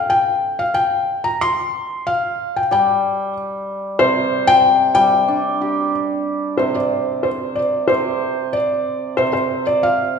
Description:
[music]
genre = chinese traditional, Chinese chamber ensemble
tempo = 92 BPM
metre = 2/4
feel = rubato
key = unclear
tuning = A4 = 439 Hz
[part]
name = felt-muted upright piano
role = melody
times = 0.0-10.2 s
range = C5 to C6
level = -16 LUFS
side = left 2 dB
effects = none
[part]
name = hammered dulcimer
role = accompaniment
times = 2.7-10.2 s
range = C3 to G4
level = -22 LUFS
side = right 4 dB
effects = none
[sound]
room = wet recital hall reverb, RT60 1.8 s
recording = recorded in a church or concert hall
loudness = -16 LUFS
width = side -6 dB against mid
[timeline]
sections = 0.0-6.6 A section; 6.6-10.2 B section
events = none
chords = none

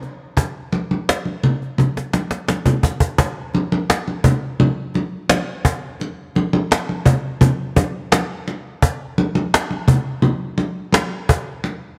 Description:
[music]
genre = soul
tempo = 85 BPM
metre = 4/4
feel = straight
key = none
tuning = none
[part]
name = cajon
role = drums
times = 0.0-11.7 s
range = none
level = -21 LUFS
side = equal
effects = none
[part]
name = congas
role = percussion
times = 0.4-11.8 s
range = none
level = -21 LUFS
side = equal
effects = none
[sound]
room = moderate echo chamber reverb, RT60 2.3 s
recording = none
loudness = -19 LUFS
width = mono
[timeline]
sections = 0.0-3.2 A section; 3.2-12.0 B section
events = drum fill 1.8-3.2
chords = none

